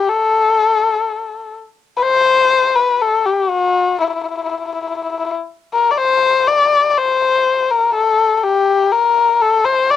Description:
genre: arabic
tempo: 122 BPM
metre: 4/4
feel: straight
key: unclear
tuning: A4 = 442 Hz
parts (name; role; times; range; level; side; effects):
- dark erhu; solo; 0.0-10.0 s; E4 to D5; -13 LUFS; left 4 dB; cassette tape
room: light reverb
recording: home recording on cassette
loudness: -13 LUFS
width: side -11 dB against mid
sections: 0.0-6.0 A section; 6.0-10.0 B section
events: none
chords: none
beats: | 0.06 0.56 1.05 1.54 | 2.04 2.53 3.02 3.52 | 4.01 4.50 5.00 5.49 | 5.98 6.47 6.96 7.46 | 7.95 8.44 8.93 9.42 | 9.91

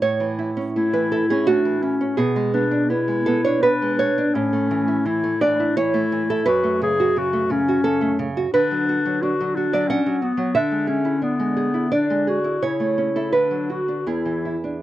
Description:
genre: romantic duo for clarinet and classical guitar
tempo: 75-92 BPM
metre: 3/4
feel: rubato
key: A major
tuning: A4 = 440 Hz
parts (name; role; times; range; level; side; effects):
- nylon-string guitar; accompaniment; 0.0-14.8 s; E2 to F#5; -21 LUFS; right 3 dB; none
- clear clarinet; melody; 0.8-14.6 s; B3 to G#4; -22 LUFS; left 3 dB; none
room: light reverb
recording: dry, close 1970s-style studio recording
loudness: -18 LUFS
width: side -14 dB against mid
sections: 0.0-14.8 A section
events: none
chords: 0.0 A; 2.2 G#dim/B; 4.3 A; 6.5 F#m; 8.5 Bm/D; 10.5 E7/D; 12.6 A/C#; 13.3 Bm/D; 14.1 E7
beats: | 0.02 0.76 1.48 | 2.18 2.90 3.62 | 4.33 5.05 5.76 | 6.46 7.16 7.83 | 8.52 9.21 9.88 | 10.54 11.22 11.92 | 12.62 13.33 14.06

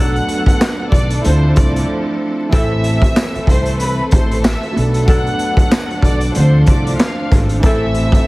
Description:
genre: hip hop, boom-bap hip-hop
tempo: 94 BPM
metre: 4/4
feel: swing 58% on 16ths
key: unclear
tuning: A4 = 440 Hz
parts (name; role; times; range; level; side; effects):
- warm symphonic violin section; melody; 0.0-8.3 s; B4 to F#6; -23 LUFS; equal; high-pass filter, low-pass filter, tape echo
- dark baby grand piano; accompaniment; 0.0-8.3 s; E3 to A4; -22 LUFS; right 2 dB; cassette tape, high-pass filter, low-pass filter, plate reverb
- clear studio string section; sustained chords; 0.0-8.3 s; E3 to A4; -25 LUFS; equal; high-pass filter, low-pass filter, plate reverb
- clear saxophone section; stabs; 0.0-7.8 s; E3 to A4; -25 LUFS; left 1 dB; high-pass filter, low-pass filter, plate reverb, tape echo
- upright bass; bass; 0.0-8.1 s; G#1 to D2; -16 LUFS; equal; none
- raw garage drum kit; drums; 0.2-8.3 s; handclaps, hi-hat, kick drum, snare drum; -14 LUFS; equal; none
- tambourine; percussion; 0.6-7.2 s; none; -37 LUFS; left 4 dB; none
room: little or no reverb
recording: heavily compressed radio sound, multiband compression, vinyl crackle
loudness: -12 LUFS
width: side -21 dB against mid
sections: 0.0-8.3 A section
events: break 1.9-2.5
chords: 0.0 Bm7; 1.2 Dm7; 2.5 Am; 4.8 Bm7; 6.4 Dm7; 7.6 Am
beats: 0.61 1.25 1.89 | 2.52 3.16 3.80 4.44 | 5.08 5.72 6.35 6.99 | 7.63 8.27

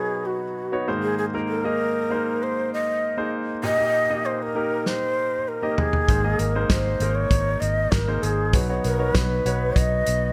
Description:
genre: piano-driven pop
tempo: 98 BPM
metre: 4/4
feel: straight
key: unclear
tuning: A4 = 440 Hz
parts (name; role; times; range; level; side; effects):
- breathy mellow shakuhachi; melody; 0.0-10.3 s; F#4 to Eb5; -27 LUFS; equal; none
- clear concert grand piano; accompaniment; 0.0-10.3 s; Ab2 to Eb5; -29 LUFS; equal; none
- loose indie drum kit; drums; 4.9-10.2 s; hi-hat, kick drum, snare drum, toms; -25 LUFS; equal; none
- vintage muted fingered electric bass; bass; 6.1-10.3 s; Ab1 to B1; -27 LUFS; equal; none
room: light reverb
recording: none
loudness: -23 LUFS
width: mono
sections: 0.0-10.3 A section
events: drum fill 4.9-6.1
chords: 0.0 Badd9; 0.9 Abadd9; 3.6 Eb; 6.1 Abadd9; 8.5 Badd9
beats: 0.57 | 1.18 1.80 2.41 3.02 | 3.63 4.25 4.86 5.47 | 6.08 6.70 7.31 7.92 | 8.54 9.15 9.76

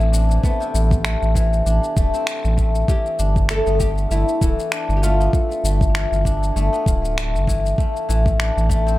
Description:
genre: organic downtempo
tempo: 98 BPM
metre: 4/4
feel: swing 56% on 16ths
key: unclear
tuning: A4 = 440 Hz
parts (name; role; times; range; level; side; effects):
- oud; melody; 0.0-6.2 s; B3 to A4; -28 LUFS; equal; dub echo
- steel-string zither; arpeggios; 0.0-9.0 s; C3 to D4; -23 LUFS; left 2 dB; tape echo
- warm sub bass; bass; 0.0-9.0 s; D1 to A1; -19 LUFS; equal; sidechain pumping
- electronic shaker and finger snaps; drums; 0.0-9.0 s; none; -28 LUFS; left 1 dB; studio reverb
- electronic kick drum; drums; 0.4-8.8 s; none; -19 LUFS; equal; studio reverb
room: light reverb, digital ambience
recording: echo-heavy mix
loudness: -16 LUFS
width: side -17 dB against mid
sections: 0.0-9.0 A section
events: none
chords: 0.0 Am; 2.9 G13; 7.8 A5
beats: | 0.43 1.05 1.66 2.27 | 2.88 3.50 4.11 4.72 | 5.33 5.95 6.56 7.17 | 7.78 8.39

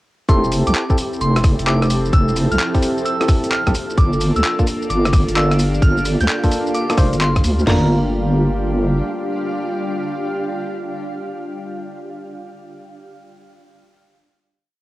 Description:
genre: UK garage, two-step garage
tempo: 130 BPM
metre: 4/4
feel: swing 66% on 16ths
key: G dorian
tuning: A4 = 441 Hz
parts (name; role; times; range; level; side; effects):
- soft synth bell; melody; 0.3-12.3 s; Bb5 to G6; -24 LUFS; equal; chorus, phaser, cassette tape, analog delay
- airy breathy pad; sustained chords; 0.3-12.1 s; G3 to A4; -25 LUFS; equal; chorus, sidechain pumping
- percussive organ stab; stabs; 0.3-12.3 s; A3 to C5; -23 LUFS; equal; chorus, analog delay
- deep soft wobble bass; bass; 0.3-9.0 s; F1 to D2; -18 LUFS; equal; chorus
- breakbeat sampler-style drum kit; drums; 0.3-7.7 s; handclaps, hi-hat, rim click, shaker; -24 LUFS; equal; studio reverb, cassette tape
- garage drum kit; drums; 0.3-7.8 s; crash cymbal, kick drum, snare drum, toms; -16 LUFS; equal; studio reverb, cassette tape
- granular cloud pad; texture; 1.2-12.1 s; F3 to A5; -30 LUFS; right 1 dB; built-in reverb, sidechain pumping
room: light reverb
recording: home recording on cassette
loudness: -15 LUFS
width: side -17 dB against mid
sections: 0.3-7.7 drop; 7.7-11.4 final chord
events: drop 0.3-7.7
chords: 0.3 Fmaj7; 3.7 Gm7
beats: | 0.29 0.75 1.21 1.67 | 2.13 2.59 3.06 3.52 | 3.98 4.44 4.90 5.36 | 5.83 6.29 6.75 7.21 | 7.67 8.13 8.59 9.05 | 9.52 9.98 10.44 10.90

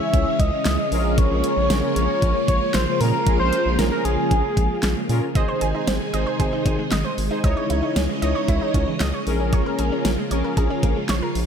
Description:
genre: synth-pop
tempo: 115 BPM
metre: 4/4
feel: straight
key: unclear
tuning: A4 = 440 Hz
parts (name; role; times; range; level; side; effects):
- octave-doubled lead; melody; 0.0-5.1 s; Ab4 to Fb5; -23 LUFS; equal; chorus, tape echo
- analog synth brass; accompaniment; 0.0-11.0 s; Db4 to Db5; -27 LUFS; left 1 dB; chorus
- string machine, violins; sustained chords; 0.0-11.5 s; C3 to Eb5; -25 LUFS; equal; ensemble chorus
- round analog bass; bass; 0.1-11.5 s; Ab1 to Bb2; -24 LUFS; equal; none
- pop drum kit; drums; 0.1-11.5 s; handclaps, hi-hat, kick drum, snare drum; -23 LUFS; equal; none
- analog pluck; arpeggios; 5.4-11.3 s; Fb3 to Eb5; -28 LUFS; right 4 dB; chorus, tape echo
room: light reverb, digital ambience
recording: none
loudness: -18 LUFS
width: side -7 dB against mid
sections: 0.0-5.4 A section; 5.4-11.5 B section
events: none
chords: 0.0 Dbmadd9; 0.9 Bbm7; 5.4 Ab; 7.4 Dbmadd9; 9.3 Bbm7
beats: 0.14 0.66 | 1.18 1.70 2.22 2.74 | 3.27 3.79 4.31 4.83 | 5.35 5.87 6.40 6.92 | 7.44 7.96 8.48 9.01 | 9.53 10.05 10.57 11.09

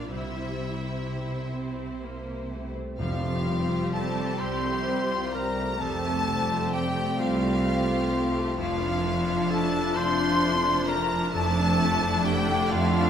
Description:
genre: cinematic, emotional film score for orchestra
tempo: 43 BPM (dotted quarters)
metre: 6/8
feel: rubato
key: F major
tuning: A4 = 437 Hz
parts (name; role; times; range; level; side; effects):
- clear studio violin section; melody; 0.0-13.1 s; E5 to C6; -32 LUFS; left 3 dB; none
- clear symphonic violin section; second line; 0.0-13.1 s; G3 to C5; -36 LUFS; left 2 dB; none
- rich symphonic viola section; accompaniment; 0.0-13.1 s; F3 to E4; -32 LUFS; right 1 dB; none
- concert harp; arpeggios; 0.0-13.1 s; F2 to C6; -34 LUFS; left 5 dB; none
- rich symphonic cello section; bass; 0.0-13.1 s; C2 to C3; -33 LUFS; right 3 dB; none
- rich symphonic double bass section; bass; 0.0-13.1 s; F1 to C2; -33 LUFS; right 3 dB; none
- silver concert flute; second line; 3.0-13.1 s; F5 to C6; -32 LUFS; left 1 dB; none
- warm clarinet; second line; 3.0-13.1 s; F4 to C5; -33 LUFS; left 1 dB; none
- mellow French horn section; sustained chords; 3.0-13.1 s; D3 to D4; -32 LUFS; left 2 dB; none
- timpani; percussion; 3.0-4.4 s; F2; -35 LUFS; right 1 dB; none
room: wet scoring stage reverb, RT60 1.7 s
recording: none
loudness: -24 LUFS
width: side -8 dB against mid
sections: 0.0-3.0 A section; 3.0-13.1 B section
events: none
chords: 0.1 C; 3.0 Fadd9; 8.6 Dmadd9/F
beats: | 0.11 1.54 | 2.98 4.40 | 5.80 7.19 | 8.58 9.96 | 11.34 12.71

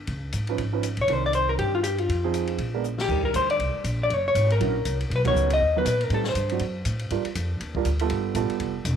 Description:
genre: jazz, small-group swing and bop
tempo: 240 BPM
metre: 4/4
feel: swing 58% on 8ths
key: C minor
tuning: A4 = 440 Hz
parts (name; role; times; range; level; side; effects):
- upright bass; bass; 0.0-9.0 s; Fb1 to A#2; -27 LUFS; equal; none
- open jazz drum kit; drums; 0.1-8.9 s; crash cymbal, hi-hat, kick drum, ride cymbal, snare drum; -34 LUFS; left 3 dB; none
- dark grand piano; accompaniment; 0.5-8.7 s; Eb3 to Cb5; -29 LUFS; right 13 dB; none
- vintage hollow-body jazz guitar; melody; 1.0-7.0 s; F4 to D#5; -24 LUFS; left 2 dB; none
room: light reverb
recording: 1960s-style stereo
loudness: -22 LUFS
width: side -8 dB against mid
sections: 0.0-3.1 A section; 3.1-9.0 B section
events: drum fill 2.8; band accent 5.2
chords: 0.1 Db9; 1.1 Cm9; 2.1 Fm7; 2.6 Bb7b9; 3.1 Ebmaj7; 4.1 Gb7; 5.1 Bmaj7; 6.1 Am7b5; 6.6 F#dim; 7.1 Gm7; 8.1 G9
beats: | 0.08 0.33 0.58 0.84 | 1.09 1.34 1.59 1.84 | 2.09 2.34 2.59 2.85 | 3.10 3.35 3.60 3.85 | 4.10 4.35 4.60 4.85 | 5.10 5.35 5.60 5.85 | 6.10 6.35 6.60 6.85 | 7.10 7.35 7.60 7.85 | 8.10 8.35 8.61 8.86

